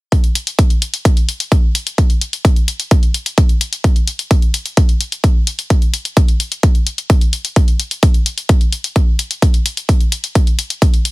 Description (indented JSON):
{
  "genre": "EDM, festival progressive house",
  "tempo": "129 BPM",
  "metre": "4/4",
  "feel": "straight",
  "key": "none",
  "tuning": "none",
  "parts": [
    { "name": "electronic hi-hat", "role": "drums", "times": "0.1-11.1 s", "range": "none", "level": "-20 LUFS", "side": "left 3 dB", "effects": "none" },
    { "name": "electronic kick drum", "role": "drums", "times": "0.1-10.9 s", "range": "none", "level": "-11 LUFS", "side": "equal", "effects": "overdrive" }
  ],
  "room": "digital ambience",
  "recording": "dense, heavily limited modern master",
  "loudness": "-12 LUFS",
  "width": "side -20 dB against mid",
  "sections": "0.1-11.1 A section",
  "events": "none",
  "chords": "none",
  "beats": "| 0.12 0.59 1.05 1.52 | 1.98 2.45 2.91 3.38 | 3.84 4.31 4.77 5.24 | 5.70 6.17 6.63 7.10 | 7.56 8.03 8.49 8.96 | 9.42 9.89 10.35 10.82"
}